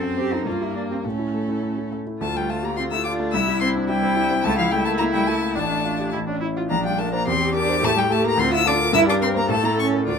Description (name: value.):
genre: quick classical-period movement for piano quartet.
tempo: 106 BPM.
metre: 2/4.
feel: straight.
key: D minor.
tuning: A4 = 440 Hz.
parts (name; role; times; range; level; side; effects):
rich violin; melody; 0.0-10.2 s; A4 to E6; -24 LUFS; left 5 dB; none.
clear grand piano; accompaniment; 0.0-10.2 s; A1 to C5; -23 LUFS; left 2 dB; none.
rich viola; accompaniment; 0.0-10.2 s; A3 to Bb4; -28 LUFS; right 2 dB; none.
warm cello; second line; 0.2-10.2 s; F3 to G4; -26 LUFS; right 6 dB; none.
room: light reverb.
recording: close, detailed microphones.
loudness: -19 LUFS.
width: side -6 dB against mid.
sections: 0.0-2.2 A section; 2.2-10.2 B section.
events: none.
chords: 0.5 Gm; 1.0 A; 2.2 Dm; 3.3 C; 4.4 A/C#; 5.6 Dm/A; 6.1 A; 6.7 Bb; 7.3 Em7b5; 7.8 Gmadd9/A; 8.4 Dm; 8.9 Gm; 9.5 A.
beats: 0.46 | 1.04 1.63 | 2.21 2.77 | 3.33 3.89 | 4.44 4.99 | 5.56 6.13 | 6.70 7.27 | 7.84 8.39 | 8.94 9.50 | 10.07.